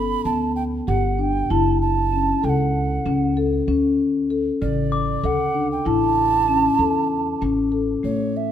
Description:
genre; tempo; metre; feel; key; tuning
contemporary instrumental, chamber music in an uneven meter; 193 BPM (eighths); 7/8; straight; A mixolydian; A4 = 440 Hz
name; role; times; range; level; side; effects
breathy mellow alto ocarina; melody; 0.0-8.5 s; C#5 to B5; -23 LUFS; right 6 dB; none
marimba with soft mallets; arpeggios; 0.0-8.5 s; C#3 to A4; -21 LUFS; left 4 dB; none
upright bass; bass; 0.0-8.5 s; F#1 to E2; -25 LUFS; right 2 dB; none
glockenspiel with soft plastic mallets; texture; 4.9-5.9 s; D6; -32 LUFS; left 7 dB; none
room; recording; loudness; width
wet concert hall reverb, RT60 1.9 s; close, detailed microphones; -18 LUFS; side -10 dB against mid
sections
0.0-8.0 A section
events
none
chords
0.0 Gadd9; 1.5 F#m7; 3.7 D5; 5.9 A

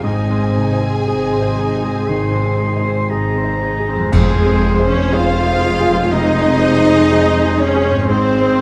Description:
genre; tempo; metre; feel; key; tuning
cinematic, emotional film score for orchestra; 60 BPM; 4/4; rubato; F minor; A4 = 440 Hz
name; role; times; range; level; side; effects
warm symphonic violin section; melody; 0.0-8.6 s; Ab4 to Ab5; -32 LUFS; equal; none
warm oboe; second line; 0.0-8.6 s; C5 to C6; -28 LUFS; equal; none
warm symphonic violin section; second line; 0.0-8.6 s; Ab4 to F5; -25 LUFS; equal; none
clear baby grand piano; accompaniment; 0.0-8.6 s; F2 to C5; -25 LUFS; equal; none
rich symphonic viola section; accompaniment; 0.0-8.6 s; Ab3 to C5; -22 LUFS; equal; none
warm French horn section; sustained chords; 0.0-8.6 s; Ab3 to C4; -26 LUFS; equal; none
concert harp; arpeggios; 0.0-8.6 s; F2 to C6; -27 LUFS; equal; none
clear symphonic double bass section; bass; 0.0-8.6 s; F1 to Ab1; -25 LUFS; equal; none
rich symphonic cello section; bass; 0.0-8.6 s; F2 to Ab2; -24 LUFS; equal; none
mellow clarinet; second line; 4.1-8.6 s; Ab4; -28 LUFS; equal; none
mellow hollow silver concert flute; second line; 4.1-8.6 s; Ab4 to F5; -25 LUFS; equal; none
clash cymbals and concert bass drum; percussion; 4.1-6.1 s; none; -24 LUFS; equal; none
timpani; percussion; 4.1-5.6 s; F2; -24 LUFS; equal; none
room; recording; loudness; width
wet scoring stage reverb, RT60 2.0 s; none; -15 LUFS; mono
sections
0.0-4.1 A section; 4.1-8.6 B section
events
band accent 4.1-5.1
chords
0.0 Ab; 4.1 Fm; 8.1 Ab

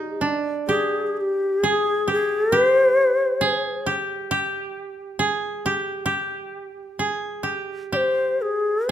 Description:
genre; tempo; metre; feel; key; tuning
japanese traditional, Japanese chamber music; 66 BPM; 2/4; uneven beats, rubato; G miyako bushi; A4 = 441 Hz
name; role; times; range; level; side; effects
mellow shakuhachi; melody; 0.0-3.9, 7.9-8.9 s; G4 to D5; -19 LUFS; left 2 dB; none
koto; second line; 0.0-8.9 s; D4 to Ab4; -24 LUFS; right 2 dB; none
room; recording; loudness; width
moderate recital hall reverb, RT60 1.3 s; close, detailed microphones; -20 LUFS; side -10 dB against mid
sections
0.7-8.9 A section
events
none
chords
none

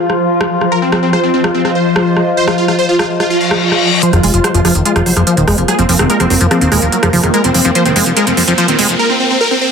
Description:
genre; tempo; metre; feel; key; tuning
psychedelic trance; 145 BPM; 4/4; straight; unclear; A4 = 439 Hz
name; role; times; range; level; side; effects
swarming drone; sustained chords; 0.0-9.0 s; F3 to Bb4; -17 LUFS; equal; built-in reverb, vintage 12-bit sampler grit
warbly tape-like pad; texture; 0.0-9.0 s; F4 to F5; -21 LUFS; right 1 dB; chorus, built-in reverb
big-room dance drum kit; drums; 0.1-9.0 s; hi-hat, rim click; -16 LUFS; right 1 dB; soft clipping on snare
supersaw stab; melody; 0.7-9.7 s; C4 to F5; -16 LUFS; equal; phaser, cassette tape, low-pass filter, ping-pong delay
reverse cymbal and riser; sound effects; 3.3-9.7 s; none; -19 LUFS; left 4 dB; none
liquid acid bass; riff; 4.0-8.9 s; Eb3 to Ab3; -15 LUFS; equal; chorus, auto-pan, digital delay
fat analog bass; bass; 4.1-9.0 s; Eb1 to F1; -15 LUFS; equal; none
room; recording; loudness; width
moderate plate reverb, RT60 1.6 s; dense, heavily limited modern master, high-pass filter; -10 LUFS; side -6 dB against mid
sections
0.0-4.0 A section; 4.0-9.7 B section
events
reverse cymbal 3.3-4.0; build-up 4.0-9.7; riser 4.0-9.7; filter sweep on acid bass 4.0-9.7; filter sweep on supersaw synth 4.0-9.7; filter sweep 4.0-9.7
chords
0.0 F5

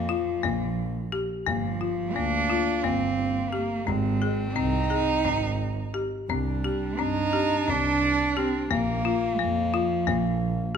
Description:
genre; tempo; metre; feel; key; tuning
contemporary instrumental, chamber music in an uneven meter; 175 BPM (eighths); 7/8; straight; C minor; A4 = 438 Hz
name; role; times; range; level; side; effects
warm cello; melody; 0.0-10.8 s; F3 to Eb4; -28 LUFS; right 5 dB; none
mellow clarinet; second line; 0.0-10.8 s; Bb3 to D4; -30 LUFS; left 2 dB; none
folk marimba with hard mallets; arpeggios; 0.0-10.8 s; Bb3 to Ab4; -29 LUFS; left 8 dB; none
warm double bass; bass; 0.0-10.8 s; G1 to G2; -30 LUFS; right 4 dB; none
frame drum; percussion; 0.4-10.4 s; none; -36 LUFS; left 4 dB; none
room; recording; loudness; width
moderate recital hall reverb, RT60 1.6 s; none; -23 LUFS; side -7 dB against mid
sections
0.0-10.8 A section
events
none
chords
0.0 Bb5; 1.5 Gm7; 3.9 Ab; 6.3 Cmadd9; 8.7 Bb5

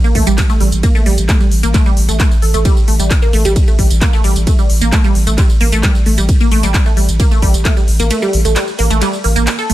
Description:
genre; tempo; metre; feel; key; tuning
driving peak-time techno; 132 BPM; 4/4; straight; unclear; A4 = 440 Hz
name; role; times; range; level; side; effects
resonant blip pluck; riff; 0.0-9.7 s; G3 to A4; -17 LUFS; right 1 dB; phaser, sidechain pumping, ping-pong delay
techno drum kit; drums; 0.0-9.7 s; handclaps, hi-hat, ride cymbal, tambourine; -20 LUFS; equal; none
saturated sub bass; bass; 0.2-9.7 s; A1; -14 LUFS; equal; overdrive, sidechain pumping, low-pass filter
electronic kick drum; drums; 0.2-7.7 s; none; -12 LUFS; equal; none
room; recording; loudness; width
little or no reverb; lossy compression artefacts; -10 LUFS; side -15 dB against mid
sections
0.0-9.7 A section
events
kick drops out 8.1-9.7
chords
0.0 A5

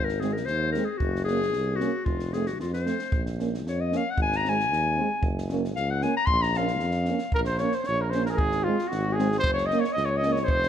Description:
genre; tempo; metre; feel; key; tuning
balkan folk, Balkan brass band; 114 BPM; 2/4; straight; Bb minor; A4 = 441 Hz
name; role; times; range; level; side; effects
clear clarinet; second line; 0.0-10.7 s; F4 to C6; -28 LUFS; left 4 dB; none
warm tuba; bass; 0.0-10.7 s; F1 to F2; -29 LUFS; equal; none
compact cocktail drum kit; percussion; 0.1-10.7 s; kick drum, snare drum; -31 LUFS; right 1 dB; none
mellow French horn; accompaniment; 0.2-10.3 s; C4 to Db4; -36 LUFS; left 4 dB; none
mellow euphonium; accompaniment; 0.2-10.4 s; Ab3 to Bb3; -32 LUFS; right 6 dB; none
mellow trumpet; melody; 7.3-10.7 s; F4 to Eb5; -26 LUFS; right 1 dB; none
room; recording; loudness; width
light reverb; none; -23 LUFS; side -9 dB against mid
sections
0.0-7.3 A section; 7.3-10.7 B section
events
clarinet solo 0.0-7.3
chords
0.0 Ab; 1.0 Gb; 2.1 F; 3.1 Bbm; 4.2 Ab; 5.2 Gb; 6.3 Bbm; 8.4 Ab; 9.4 Gb

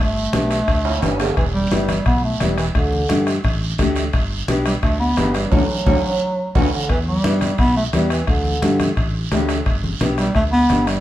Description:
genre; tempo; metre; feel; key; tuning
latin, cumbia; 174 BPM; 4/4; straight; G major; A4 = 435 Hz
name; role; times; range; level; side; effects
breathy bass clarinet; melody; 0.0-11.0 s; D3 to B3; -20 LUFS; right 1 dB; none
modern bright fingered electric bass; bass; 0.0-11.0 s; E1 to G2; -23 LUFS; equal; none
nylon-string guitar; accompaniment; 0.3-10.9 s; A3 to G4; -24 LUFS; left 2 dB; none
bombo; percussion; 0.3-11.0 s; none; -22 LUFS; left 1 dB; none
congas; percussion; 0.3-10.9 s; none; -27 LUFS; equal; none
guiro; percussion; 0.3-11.0 s; none; -31 LUFS; right 6 dB; none
timbales; percussion; 0.3-11.0 s; none; -30 LUFS; right 5 dB; none
room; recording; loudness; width
moderate large studio reverb, RT60 1.2 s; band playing live in one room; -16 LUFS; side -14 dB against mid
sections
0.0-6.9 A section; 6.9-11.0 A section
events
drum fill 0.9-1.4, 6.2-6.9; band accent 5.5-6.9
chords
0.0 Gadd9; 1.4 Em; 2.8 Dsus4; 4.1 G; 5.5 D; 6.9 Em; 8.3 Dsus4; 9.7 G

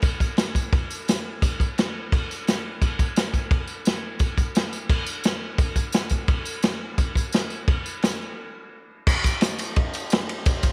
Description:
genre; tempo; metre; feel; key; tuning
rock; 172 BPM; 4/4; straight; none; none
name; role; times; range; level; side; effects
vintage drum kit; drums; 0.0-10.7 s; crash cymbal, kick drum, ride cymbal, snare drum; -24 LUFS; equal; none
tambourine; percussion; 0.0-10.7 s; none; -38 LUFS; equal; none
room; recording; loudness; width
light reverb; none; -24 LUFS; mono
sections
0.0-9.1 A section; 9.1-10.7 B section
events
break 8.4-9.1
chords
none

